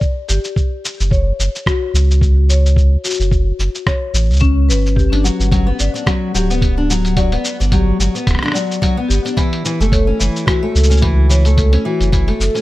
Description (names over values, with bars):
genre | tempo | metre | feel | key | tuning
folktronica | 109 BPM | 4/4 | swing 56% on 16ths | unclear | A4 = 439 Hz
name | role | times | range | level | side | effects
electronic kick drum | drums | 0.0-12.2 s | none | -16 LUFS | equal | none
lo-fi sampler-style drum kit | drums | 0.0-12.6 s | cabasa, hi-hat, rim click | -22 LUFS | equal | none
marimba with soft mallets | second line | 0.3-12.0 s | C#4 to D5 | -23 LUFS | left 6 dB | ping-pong delay
warm sub bass | bass | 0.3-12.5 s | D1 to C#2 | -13 LUFS | equal | none
fingerpicked twelve-string acoustic guitar | arpeggios | 5.1-12.6 s | E3 to D4 | -19 LUFS | left 1 dB | ping-pong delay
room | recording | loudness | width
little or no reverb | none | -13 LUFS | side -17 dB against mid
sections
0.0-12.6 A section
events
none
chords
0.0 G5; 0.6 F#5; 5.0 Gmaj7; 9.4 F#m7